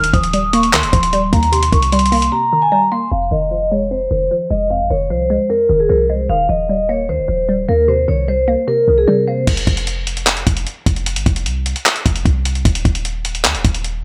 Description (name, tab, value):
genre	hip hop, trap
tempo	151 BPM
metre	4/4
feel	half-time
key	F minor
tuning	A4 = 438 Hz
part	vibraphone with medium hard mallets	melody	0.0-9.4 s	Ab4 to Eb6	-18 LUFS	equal	low-pass filter
part	glassy wavetable pluck	accompaniment	0.0-9.5 s	F2 to Bb3	-23 LUFS	equal	chorus, low-pass filter
part	clean 808-style bass	bass	0.0-14.0 s	Eb1 to C3	-22 LUFS	equal	none
part	dusty soul sampler-style drum kit	drums	0.0-2.3, 9.5-13.9 s	crash cymbal, handclaps, hi-hat, kick drum	-19 LUFS	equal	none
room	little or no reverb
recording	none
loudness	-16 LUFS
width	mono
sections	0.0-3.1 A section; 3.1-9.5 B section; 9.5-14.0 C section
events	silent gap 2.3-3.1; filter sweep 3.1-9.5; break 9.5-14.0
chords	0.0 Ebadd9; 1.5 Cm7; 3.1 Fm7; 6.3 Ebadd9; 7.9 Cm7; 9.5 F5; 12.7 N.C.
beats	0.33 0.73 1.13 | 1.53 1.92 2.32 2.72 | 3.12 3.51 3.91 4.31 | 4.71 5.10 5.50 5.90 | 6.29 6.69 7.09 7.49 | 7.88 8.28 8.68 9.08 | 9.47 9.87 10.27 10.67 | 11.06 11.46 11.86 12.26 | 12.65 13.05 13.45 13.84